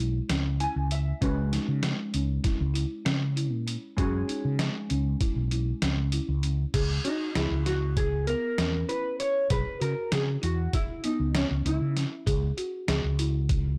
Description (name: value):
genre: progressive instrumental, band music in an uneven meter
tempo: 196 BPM (eighths)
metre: 9/8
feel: straight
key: C# dorian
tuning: A4 = 440 Hz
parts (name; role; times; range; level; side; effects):
- hollow-body jazz guitar; accompaniment; 0.0-12.2 s; G#3 to G#5; -34 LUFS; equal; double-tracked, plate reverb
- folk marimba with soft mallets; arpeggios; 0.0-13.6 s; B3 to G#4; -38 LUFS; equal; digital delay, plate reverb
- mellow fretless electric bass; bass; 0.0-13.8 s; B1 to C#3; -30 LUFS; equal; none
- trip hop sampler-style drum kit; drums; 0.3-13.6 s; crash cymbal, hi-hat, kick drum, snare drum; -33 LUFS; equal; none
room: moderate studio reverb, RT60 0.8 s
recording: blown-out, overdriven recording, overdrive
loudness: -28 LUFS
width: mono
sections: 0.0-6.7 A section; 6.7-13.8 B section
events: hollow-body jazz guitar fill 0.3-1.2; hollow-body jazz guitar solo 6.7-13.8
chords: 0.0 C#m7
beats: 0.30 0.61 0.92 | 1.22 1.53 1.84 2.14 2.45 2.76 3.06 3.37 3.68 | 3.98 4.29 4.60 4.91 5.21 5.52 5.83 6.13 6.44 | 6.75 7.05 7.36 7.67 7.97 8.28 8.59 8.89 9.20 | 9.51 9.81 10.12 10.43 10.73 11.04 11.35 11.65 11.96 | 12.27 12.57 12.88 13.19 13.49